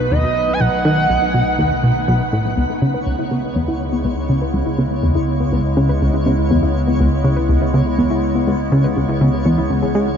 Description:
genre	ambient, sequencer-driven space music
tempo	122 BPM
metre	4/4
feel	straight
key	C# minor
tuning	A4 = 440 Hz
part	pulse-width lead	melody	0.0-2.3 s	B4 to G#5	-20 LUFS	right 2 dB	chorus, tape echo
part	evolving wavetable pad	sustained chords	0.0-10.2 s	C#3 to E4	-22 LUFS	right 1 dB	chorus, built-in reverb
part	analog drone	bass	0.0-10.2 s	B1 to C#2	-23 LUFS	equal	chorus
part	twinkling granular texture	texture	0.0-10.2 s	B4 to C#5	-31 LUFS	left 1 dB	built-in reverb
part	plucky analog bass	riff	0.1-10.1 s	B1 to G#3	-18 LUFS	equal	tape echo
part	soft round pluck	arpeggios	2.6-10.1 s	B3 to B4	-22 LUFS	left 3 dB	chorus, auto-pan, tape echo
room	moderate huge ambient reverb, RT60 7.7 s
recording	nothing above 8.0 kHz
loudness	-14 LUFS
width	side -7 dB against mid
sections	0.0-10.2 A section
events	none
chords	0.0 B7; 2.6 C#m7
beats	0.11 | 0.61 1.10 1.59 2.08 | 2.57 3.06 3.56 4.05 | 4.54 5.03 5.52 6.02 | 6.51 7.00 7.49 7.98 | 8.47 8.97 9.46 9.95

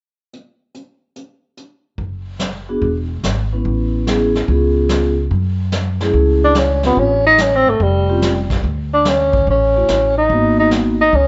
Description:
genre	jazz, small-group swing and bop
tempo	144 BPM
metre	4/4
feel	swing 67% on 8ths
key	F# minor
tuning	A4 = 441 Hz
part	vintage brush drum kit	drums	0.3-11.3 s	brushed snare drum, hi-hat, kick drum, snare drum	-26 LUFS	equal	none
part	upright bass	bass	2.0-11.3 s	E1 to F#2	-21 LUFS	equal	none
part	vibraphone with medium mallets	accompaniment	2.7-11.0 s	A3 to B4	-20 LUFS	equal	none
part	breathy tenor saxophone	melody	6.4-11.3 s	G3 to D#4	-16 LUFS	equal	plate reverb
room	moderate studio reverb, RT60 0.9 s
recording	worn, warbling old tape, cassette tape, warbly pitch drift, nothing above 7.8 kHz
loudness	-16 LUFS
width	mono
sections	0.3-2.0 A section; 2.0-5.3 B section; 5.3-11.3 C section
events	none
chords	0.3 N.C.; 2.0 F#sus2; 2.8 E; 3.7 Amaj9; 4.5 C#7; 5.3 F#m7; 7.0 A7b13; 8.6 Dmaj7(no3); 10.3 G#m7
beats	| 0.33 0.74 1.16 1.57 | 1.99 2.40 2.82 3.24 | 3.65 4.07 4.48 4.90 | 5.31 5.73 6.14 6.56 | 6.97 7.39 7.81 8.22 | 8.64 9.05 9.47 9.89 | 10.30 10.72 11.14

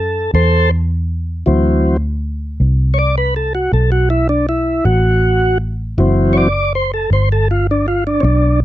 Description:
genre	slow blues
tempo	53 BPM (dotted quarters)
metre	12/8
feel	straight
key	D mixolydian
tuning	A4 = 440 Hz
part	tonewheel organ	sustained chords	0.0-8.6 s	E3 to D5	-15 LUFS	equal	slow rotary speaker
part	vintage muted fingered electric bass	bass	0.0-8.6 s	F#1 to F#2	-15 LUFS	equal	none
room	little or no reverb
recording	dry, close 1970s-style studio recording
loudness	-13 LUFS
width	side -14 dB against mid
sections	0.0-8.6 A section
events	tonewheel organ solo 0.0-8.6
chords	0.0 D7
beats	0.34 | 1.47 2.60 3.73 4.85 | 5.98 7.10 8.23

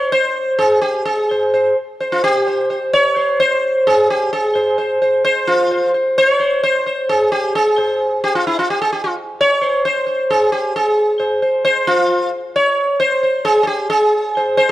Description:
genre	indian classical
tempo	131 BPM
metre	7/4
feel	straight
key	unclear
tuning	A4 = 440 Hz
part	sitar	solo	0.0-14.7 s	E4 to Db5	-14 LUFS	equal	slapback echo
room	small room ambience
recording	dry, close 1970s-style studio recording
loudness	-14 LUFS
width	side -14 dB against mid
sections	0.0-14.7 A section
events	speeding up 0.0-14.7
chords	none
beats	0.14 0.61 | 1.07 1.54 2.00 2.47 2.93 3.40 3.86 | 4.32 4.78 5.25 5.71 6.17 6.63 7.08 | 7.54 8.00 8.46 8.92 9.37 9.83 10.29 | 10.74 11.19 11.65 12.10 12.55 13.01 13.46 | 13.91 14.36

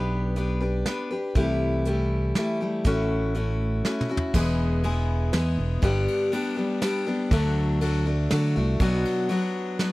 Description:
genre	folk rock and heartland rock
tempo	121 BPM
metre	3/4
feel	straight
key	unclear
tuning	A4 = 440 Hz
part	picked steel-string acoustic guitar	accompaniment	0.0-9.9 s	E2 to B4	-26 LUFS	left 2 dB	none
part	fingered electric bass	bass	0.0-9.0 s	E1 to D3	-24 LUFS	right 1 dB	none
part	soft brush drum kit	drums	0.4-9.9 s	crash cymbal, hi-hat, kick drum, ride cymbal, snare drum, toms	-29 LUFS	right 1 dB	none
room	small room ambience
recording	dry, close 1970s-style studio recording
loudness	-22 LUFS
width	side -19 dB against mid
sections	0.0-4.3 A section; 4.3-9.9 B section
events	drum fill 3.8-4.3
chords	0.0 G/B; 1.4 C6; 2.9 A6; 4.3 E; 5.8 G; 7.3 D; 8.8 Bm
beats	0.37 0.87 | 1.36 1.86 2.36 | 2.85 3.35 3.85 | 4.34 4.84 5.34 | 5.83 6.33 6.82 | 7.32 7.82 8.31 | 8.81 9.30 9.80

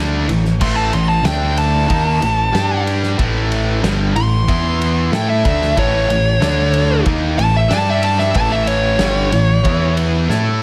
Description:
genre	quiet-loud alternative rock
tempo	93 BPM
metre	4/4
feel	straight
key	A mixolydian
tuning	A4 = 440 Hz
part	distorted electric guitar	riff	0.0-10.6 s	G2 to A4	-24 LUFS	equal	overdrive
part	distorted electric guitar	riff	0.0-10.6 s	G2 to A4	-28 LUFS	equal	overdrive
part	thick fuzz guitar	riff	0.0-10.6 s	G2 to A4	-24 LUFS	equal	distortion
part	growling picked electric bass	bass	0.0-10.6 s	G1 to A2	-21 LUFS	equal	overdrive
part	loose indie drum kit	drums	0.3-10.4 s	crash cymbal, kick drum, ride cymbal, snare drum	-25 LUFS	equal	none
part	smooth overdriven lead guitar	melody	0.6-9.9 s	C#5 to C6	-21 LUFS	equal	none
room	light reverb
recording	none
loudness	-16 LUFS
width	mono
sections	0.0-10.6 A section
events	lead electric guitar solo 0.0-10.6; drum fill 10.3-10.6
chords	0.0 A5; 1.2 D5; 1.9 A5; 2.5 G5; 3.2 A5; 4.5 E5; 5.1 A; 6.4 D5; 7.1 A5; 7.7 G5; 8.4 A; 9.6 E5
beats	| 0.60 1.25 1.89 2.54 | 3.18 3.83 4.47 5.12 | 5.77 6.41 7.06 7.70 | 8.35 9.00 9.65 10.30

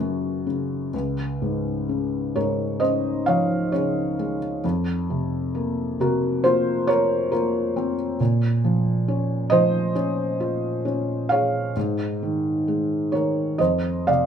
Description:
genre	classical, lyrical solo piano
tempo	66 BPM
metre	4/4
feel	uneven beats, rubato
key	Db major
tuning	A4 = 440 Hz
part	felt-muted upright piano	solo	0.0-14.3 s	Db2 to F5	-21 LUFS	equal	none
room	wet studio reverb, RT60 0.6 s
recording	minimal, uncompressed stereo recording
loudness	-21 LUFS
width	side -8 dB against mid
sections	0.9-14.3 A section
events	none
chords	0.0 F#maj7; 0.9 Dbmaj7; 4.6 Fsus4; 8.2 Bbm7; 11.8 Ab5; 13.6 F5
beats	| 0.94 1.89 2.82 3.73 | 4.64 5.54 6.44 7.32 | 8.20 9.07 9.95 10.86 | 11.76 12.67 13.59

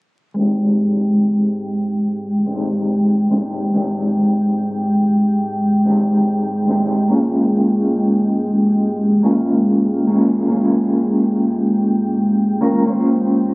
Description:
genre	trip hop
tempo	71 BPM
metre	4/4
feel	swing 60% on 16ths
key	unclear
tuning	A4 = 440 Hz
part	mellow electric guitar	accompaniment	0.3-13.5 s	Ab3 to C5	-17 LUFS	equal	tremolo, vintage 12-bit sampler grit, low-pass filter, tape echo
part	dark analog pad	sustained chords	0.4-13.5 s	Ab3 to G5	-17 LUFS	equal	chorus
room	light reverb, digital ambience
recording	recorded on a phone in the room, club reverb, vinyl crackle, low-pass filter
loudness	-14 LUFS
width	side -26 dB against mid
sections	0.4-13.5 A section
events	filter sweep on clean electric guitar 0.4-13.5; filter sweep 0.4-13.5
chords	0.4 Abmaj7; 7.1 Bbm13/Ab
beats	| 0.37 1.21 2.06 2.90 | 3.75 4.59 5.44 6.28 | 7.13 7.97 8.82 9.66 | 10.51 11.35 12.20 13.04

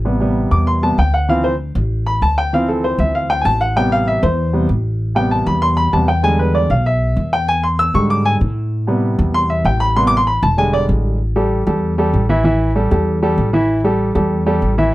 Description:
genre	Afro-Cuban jazz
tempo	194 BPM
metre	4/4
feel	straight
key	A minor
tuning	A4 = 435 Hz
part	warm upright piano	accompaniment	0.0-14.9 s	C3 to E6	-16 LUFS	equal	none
part	upright bass	bass	0.0-14.9 s	E1 to A2	-17 LUFS	equal	none
room	little or no reverb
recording	dry, close 1970s-style studio recording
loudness	-14 LUFS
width	side -17 dB against mid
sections	0.0-11.2 A section; 11.2-14.9 B section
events	upright piano solo 0.0-11.2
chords	0.0 Am7; 1.3 Dm7; 3.8 Am7; 6.2 E7#9; 8.7 Am7; 10.6 E7#9; 11.2 A5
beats	| 0.05 0.36 0.67 0.98 | 1.29 1.60 1.91 2.22 | 2.52 2.83 3.14 3.45 | 3.76 4.07 4.38 4.69 | 5.00 5.31 5.62 5.93 | 6.24 6.55 6.86 7.17 | 7.48 7.79 8.10 8.41 | 8.72 9.03 9.34 9.65 | 9.96 10.27 10.58 10.89 | 11.21 11.52 11.83 12.14 | 12.45 12.76 13.07 13.38 | 13.69 14.00 14.31 14.62 | 14.94

